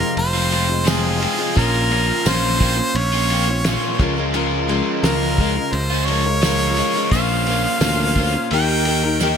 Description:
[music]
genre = folk rock and heartland rock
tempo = 86 BPM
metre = 4/4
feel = straight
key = unclear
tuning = A4 = 440 Hz
[part]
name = bright harmonica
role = melody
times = 0.0-9.4 s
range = Ab4 to G5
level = -22 LUFS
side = right 1 dB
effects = ping-pong delay
[part]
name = picked steel-string acoustic guitar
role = accompaniment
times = 0.0-9.4 s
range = F2 to C5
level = -24 LUFS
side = left 6 dB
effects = none
[part]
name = overdriven electric guitar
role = riff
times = 0.0-9.4 s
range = F2 to G4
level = -22 LUFS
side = right 1 dB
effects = lush chorus
[part]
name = picked electric bass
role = bass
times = 0.0-9.4 s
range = F1 to Eb2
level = -22 LUFS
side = equal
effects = none
[part]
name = cloth-damped thuddy drum kit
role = drums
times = 0.2-9.4 s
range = kick drum, ride cymbal, snare drum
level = -25 LUFS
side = right 1 dB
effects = none
[part]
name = tambourine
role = percussion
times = 0.9-9.4 s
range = none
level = -31 LUFS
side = right 18 dB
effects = none
[sound]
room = light reverb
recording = bright 1980s-style digital production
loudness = -16 LUFS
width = side -7 dB against mid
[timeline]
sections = 0.0-9.4 A section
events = drum fill 9.2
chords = 0.0 Fm; 1.6 Bbmadd9; 4.0 Db6; 7.1 Bbmadd9; 8.5 Eb

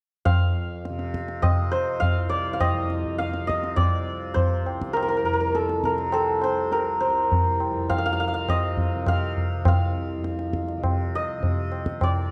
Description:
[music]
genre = indian classical, Hindustani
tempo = 102 BPM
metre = 4/4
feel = straight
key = C raga bageshri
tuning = A4 = 439 Hz
[part]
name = santur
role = melody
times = 0.3-12.3 s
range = A4 to F5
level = -28 LUFS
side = equal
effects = none
[part]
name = tanpura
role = drone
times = 0.3-12.3 s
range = C2 to C3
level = -33 LUFS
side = equal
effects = none
[part]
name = tabla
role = percussion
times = 0.3-12.2 s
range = none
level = -27 LUFS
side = equal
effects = none
[sound]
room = light reverb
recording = dark, warm production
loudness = -24 LUFS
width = mono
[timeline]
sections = 0.3-12.3 A section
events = none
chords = none

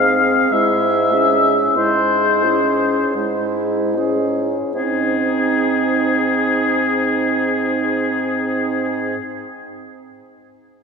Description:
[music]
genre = classical, slow romantic movement for wind quintet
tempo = 36-52 BPM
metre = 3/4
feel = rubato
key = Ab major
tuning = A4 = 440 Hz
[part]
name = warm oboe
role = second line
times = 0.0-9.2 s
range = Ab4 to F5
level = -18 LUFS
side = left 3 dB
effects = none
[part]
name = clear French horn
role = accompaniment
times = 0.0-9.2 s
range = Ab3 to Db4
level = -23 LUFS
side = right 2 dB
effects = none
[part]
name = clear clarinet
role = accompaniment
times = 0.0-9.2 s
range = Eb4 to Ab4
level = -22 LUFS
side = right 4 dB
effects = none
[part]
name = clear bassoon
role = bass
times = 0.0-9.2 s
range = Ab2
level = -23 LUFS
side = equal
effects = none
[sound]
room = wet church reverb, RT60 3.5 s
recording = minimal, uncompressed stereo recording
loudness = -15 LUFS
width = side -5 dB against mid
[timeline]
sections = 0.0-4.7 A section; 4.7-9.1 B section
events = slowing down 0.0-4.7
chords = 0.0 Ab; 0.5 Dbm/Ab; 4.7 Ab

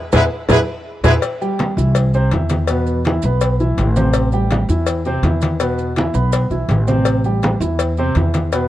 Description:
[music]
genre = latin, salsa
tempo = 164 BPM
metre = 4/4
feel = straight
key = A minor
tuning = A4 = 440 Hz
[part]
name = bright horn section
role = melody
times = 0.1-1.1 s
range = E4 to B4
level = -20 LUFS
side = left 1 dB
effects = none
[part]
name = clear trombone section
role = second line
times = 0.1-1.1 s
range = D3 to G#3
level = -26 LUFS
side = right 3 dB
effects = none
[part]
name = dark grand piano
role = accompaniment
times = 0.1-8.7 s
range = B2 to B5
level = -20 LUFS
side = right 1 dB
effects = none
[part]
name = upright bass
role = bass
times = 0.1-8.7 s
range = A1 to E2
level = -17 LUFS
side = equal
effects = none
[part]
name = congas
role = percussion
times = 0.1-8.7 s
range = none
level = -21 LUFS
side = equal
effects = none
[part]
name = cowbell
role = percussion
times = 0.1-8.7 s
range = none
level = -24 LUFS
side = left 5 dB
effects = none
[part]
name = maracas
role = percussion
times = 0.1-8.7 s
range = none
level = -36 LUFS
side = right 7 dB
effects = none
[sound]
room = little or no reverb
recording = worn, warbling old tape, cassette tape, warbly pitch drift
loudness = -14 LUFS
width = side -14 dB against mid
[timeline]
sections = 0.0-1.2 A section; 1.2-8.7 B section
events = band accent 0.0-1.2; drum fill 0.3-1.2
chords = 0.0 E7; 1.2 C; 2.7 E5; 4.1 Am7; 5.6 E5; 7.1 Am7

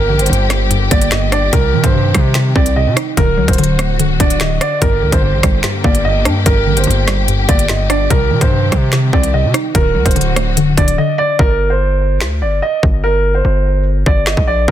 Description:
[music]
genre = hip hop, drill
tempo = 146 BPM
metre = 4/4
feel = half-time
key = G harmonic minor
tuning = A4 = 440 Hz
[part]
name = dark baby grand piano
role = melody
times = 0.0-14.7 s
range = Bb4 to Eb5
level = -18 LUFS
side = right 2 dB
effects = low-pass filter, ping-pong delay
[part]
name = mallet-like synth pluck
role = accompaniment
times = 0.0-11.4 s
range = G2 to D5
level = -18 LUFS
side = equal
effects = chorus, phaser, low-pass filter
[part]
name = warm symphonic string section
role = sustained chords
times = 0.0-11.4 s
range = D3 to G4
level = -22 LUFS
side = left 3 dB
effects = none
[part]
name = distorted 808-style bass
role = bass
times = 0.0-14.7 s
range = C1 to C3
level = -16 LUFS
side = equal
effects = distortion
[part]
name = drill drum kit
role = drums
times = 0.2-14.7 s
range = finger snaps, hi-hat, kick drum, rim click, snare drum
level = -15 LUFS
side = equal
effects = soft clipping on snare
[sound]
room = little or no reverb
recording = dense, heavily limited modern master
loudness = -11 LUFS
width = side -11 dB against mid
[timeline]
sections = 0.0-11.4 A section; 11.4-14.7 B section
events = drums muted 11.0-11.4; hi-hats muted 11.4-14.7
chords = 0.0 Gm; 1.5 Cm; 3.2 D; 4.8 Gm; 8.1 Cm; 9.7 D; 11.4 N.C.

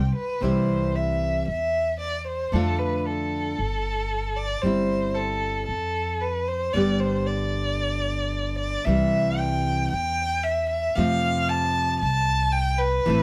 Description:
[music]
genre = tango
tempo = 114 BPM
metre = 4/4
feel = rubato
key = C major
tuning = A4 = 440 Hz
[part]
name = warm violin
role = second line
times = 0.0-13.2 s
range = A4 to A5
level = -28 LUFS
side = equal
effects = none
[part]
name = upright bass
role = bass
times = 0.0-13.2 s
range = G1 to F2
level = -31 LUFS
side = equal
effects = none
[part]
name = nylon-string guitar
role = accompaniment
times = 0.4-13.2 s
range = C3 to G4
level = -28 LUFS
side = equal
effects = none
[sound]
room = moderate studio reverb, RT60 0.7 s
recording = none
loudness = -25 LUFS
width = mono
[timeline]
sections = 0.4-13.2 A section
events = violin solo 0.4-13.2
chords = 0.4 C; 1.5 Cadd9/E; 2.5 Dm/F; 3.6 Gsus2; 4.6 C/G; 5.7 F; 6.7 G; 8.9 C; 9.9 Em; 11.0 F; 12.0 Am9/C

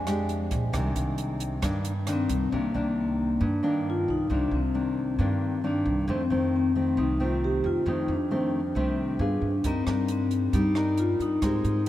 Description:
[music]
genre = bossa nova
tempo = 135 BPM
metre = 4/4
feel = straight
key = C minor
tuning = A4 = 438 Hz
[part]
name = vibraphone with soft mallets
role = melody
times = 0.0-11.9 s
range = Bb3 to Ab5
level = -27 LUFS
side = left 2 dB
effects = none
[part]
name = nylon-string guitar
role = accompaniment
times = 0.0-11.9 s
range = F2 to Bb4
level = -30 LUFS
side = equal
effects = none
[part]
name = upright bass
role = bass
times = 0.0-11.9 s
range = Bb1 to Ab2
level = -30 LUFS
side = right 1 dB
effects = none
[part]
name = compact cocktail drum kit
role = drums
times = 0.1-2.4, 9.6-11.9 s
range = hi-hat, kick drum, rim click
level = -34 LUFS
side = right 1 dB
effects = none
[sound]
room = moderate cathedral reverb, RT60 6.4 s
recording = in a vast, echoing space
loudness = -24 LUFS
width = side -13 dB against mid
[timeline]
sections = 0.0-2.5 A section; 2.5-11.9 B section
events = vibraphone solo 0.0-2.5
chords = 0.0 Bb6; 0.7 Cm9; 6.1 F7; 9.2 G7b9; 9.6 Cm9/G

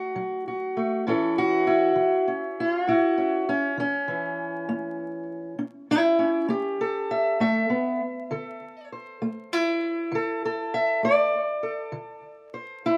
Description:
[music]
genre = acoustic country blues, solo or duo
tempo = 66 BPM (dotted quarters)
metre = 12/8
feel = straight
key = A mixolydian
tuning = A4 = 445 Hz
[part]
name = fingerpicked steel-string acoustic guitar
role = solo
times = 0.0-13.0 s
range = A2 to E5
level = -26 LUFS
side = equal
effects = none
[sound]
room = little or no reverb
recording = recorded outdoors, with no room sound, vinyl crackle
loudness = -25 LUFS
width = mono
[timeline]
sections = 0.0-13.0 A section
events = none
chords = 0.0 D (rootless); 1.1 A7; 8.3 D7(no3)

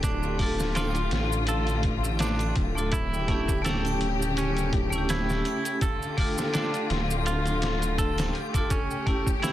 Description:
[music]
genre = trip hop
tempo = 83 BPM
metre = 4/4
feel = swing 55% on 16ths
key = D harmonic minor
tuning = A4 = 441 Hz
[part]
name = muted studio string section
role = sustained chords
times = 0.0-9.5 s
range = C#3 to G4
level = -31 LUFS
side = left 3 dB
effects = none
[part]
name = clean electric guitar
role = arpeggios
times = 0.0-9.5 s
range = C#4 to A4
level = -33 LUFS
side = right 4 dB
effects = tape echo
[part]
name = dark detuned saw bass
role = bass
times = 0.0-8.3 s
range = D1 to A1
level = -28 LUFS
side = equal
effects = tube saturation
[part]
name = trip hop sampler-style drum kit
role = drums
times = 0.0-9.5 s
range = hi-hat, kick drum, snare drum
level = -29 LUFS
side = equal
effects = studio reverb
[part]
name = maracas and triangle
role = percussion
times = 0.0-9.5 s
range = none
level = -40 LUFS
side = right 3 dB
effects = none
[part]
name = backwards swelling texture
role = texture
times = 0.0-9.5 s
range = G4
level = -41 LUFS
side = right 2 dB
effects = built-in reverb
[part]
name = vibraphone with hard mallets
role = accompaniment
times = 0.4-9.5 s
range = A3 to A4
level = -32 LUFS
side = right 1 dB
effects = harmonic tremolo, tape echo
[sound]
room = studio ambience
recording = dense, heavily limited modern master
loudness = -24 LUFS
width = side -13 dB against mid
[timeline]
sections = 0.0-9.5 A section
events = none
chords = 0.0 Dm; 2.9 A7/D; 5.8 Dm; 8.7 A7

